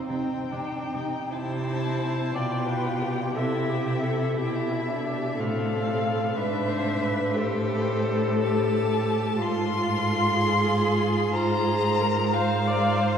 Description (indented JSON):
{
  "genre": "classical, slow romantic movement for string quartet",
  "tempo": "45-63 BPM (dotted quarters)",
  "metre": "6/8",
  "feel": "rubato",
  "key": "C major",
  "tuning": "A4 = 440 Hz",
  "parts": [
    { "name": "rich violin", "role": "melody", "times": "0.0-13.2 s", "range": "C5 to C6", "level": "-29 LUFS", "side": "left 3 dB", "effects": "none" },
    { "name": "rich violin", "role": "second line", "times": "0.0-13.2 s", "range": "C4 to C5", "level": "-31 LUFS", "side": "left 2 dB", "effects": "none" },
    { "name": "rich viola", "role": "accompaniment", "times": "0.0-13.2 s", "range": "C4 to D5", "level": "-29 LUFS", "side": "equal", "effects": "none" },
    { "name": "rich cello", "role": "bass", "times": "0.1-13.2 s", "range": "G#2 to C3", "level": "-28 LUFS", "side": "right 2 dB", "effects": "none" }
  ],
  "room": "wet cathedral reverb, RT60 6.5 s",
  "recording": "heard from further back in the room",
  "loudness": "-23 LUFS",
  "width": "side -8 dB against mid",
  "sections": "0.0-1.3 A section; 1.3-13.2 B section",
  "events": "none",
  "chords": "0.0 Cm; 1.3 C; 2.4 G7/B; 3.4 C; 5.4 Am; 6.4 E7/G#; 7.3 Am7; 9.4 Fm/Ab; 11.3 Ab69",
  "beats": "0.10 | 1.34 2.35 | 3.35 4.37 | 5.38 6.36 | 7.35 8.43 | 9.41 10.37 | 11.35 12.34"
}